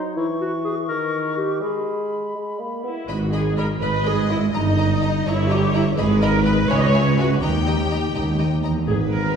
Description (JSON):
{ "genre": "cinematic", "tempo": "83 BPM (dotted quarters)", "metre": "6/8", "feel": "straight", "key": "G# minor", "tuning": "A4 = 440 Hz", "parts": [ { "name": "silver concert flute", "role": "second line", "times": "0.0-2.8 s", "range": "B5 to C#6", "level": "-32 LUFS", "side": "left 2 dB", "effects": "none" }, { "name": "warm clarinet", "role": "second line", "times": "0.0-2.4 s", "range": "E4 to A#4", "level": "-25 LUFS", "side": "left 1 dB", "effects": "none" }, { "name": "dark bassoon", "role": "accompaniment", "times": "0.0-3.0 s", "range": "D#3 to B3", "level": "-27 LUFS", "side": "left 2 dB", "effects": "none" }, { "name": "rich chamber viola section", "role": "accompaniment", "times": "2.8-9.4 s", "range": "D#4 to D#5", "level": "-24 LUFS", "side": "right 1 dB", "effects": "none" }, { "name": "rich studio violin section", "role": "second line", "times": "3.1-8.7 s", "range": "D#5 to B5", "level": "-31 LUFS", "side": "left 2 dB", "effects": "none" }, { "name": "rich chamber double bass section", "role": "bass", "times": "3.1-9.4 s", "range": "G1 to D#2", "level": "-24 LUFS", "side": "right 1 dB", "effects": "none" }, { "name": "warm chamber cello section", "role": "bass", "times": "3.1-9.4 s", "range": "C#2 to G#2", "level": "-23 LUFS", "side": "right 2 dB", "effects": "none" }, { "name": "warm tuba", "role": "bass", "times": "3.1-9.4 s", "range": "G1 to D#2", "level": "-23 LUFS", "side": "equal", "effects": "none" }, { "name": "rich chamber violin section", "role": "melody", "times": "3.8-9.4 s", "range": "B4 to G5", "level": "-29 LUFS", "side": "left 5 dB", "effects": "none" } ], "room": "wet scoring stage reverb, RT60 1.6 s", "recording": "heard from further back in the room", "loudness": "-18 LUFS", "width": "side -7 dB against mid", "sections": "0.0-3.1 A section; 3.1-9.4 A section", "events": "none", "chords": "0.2 C#m/E; 0.9 D#5; 1.6 G#m; 4.5 D#7/G; 6.0 G#m; 6.7 C#m; 7.4 D#", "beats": "| 0.17 0.89 | 1.62 2.35 | 3.09 3.81 | 4.54 5.26 | 5.98 6.70 | 7.42 8.15 | 8.87" }